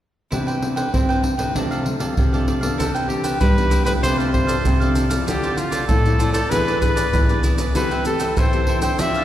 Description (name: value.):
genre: samba and choro.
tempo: 97 BPM.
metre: 4/4.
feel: straight.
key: C major.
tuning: A4 = 439 Hz.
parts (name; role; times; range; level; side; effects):
cavaquinho; accompaniment; 0.3-9.2 s; D4 to G5; -27 LUFS; right 2 dB; none.
nylon-string guitar; accompaniment; 0.3-9.2 s; G2 to A4; -27 LUFS; left 4 dB; none.
nylon-string guitar; bass; 0.3-9.2 s; A2 to C4; -24 LUFS; equal; none.
surdo, pandeiro and maracas; percussion; 0.3-9.2 s; none; -20 LUFS; equal; none.
clear trumpet; melody; 2.8-9.2 s; F4 to E5; -23 LUFS; equal; none.
room: wet church reverb, RT60 3.0 s.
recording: recorded in a church or concert hall.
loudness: -17 LUFS.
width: side -12 dB against mid.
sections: 0.3-2.8 A section; 2.8-9.2 B section.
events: none.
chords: 0.3 Cmaj9; 1.6 F6/C; 2.8 Cmaj9; 4.0 F6/C; 5.3 Dm9; 6.5 E7; 7.8 Am7/E.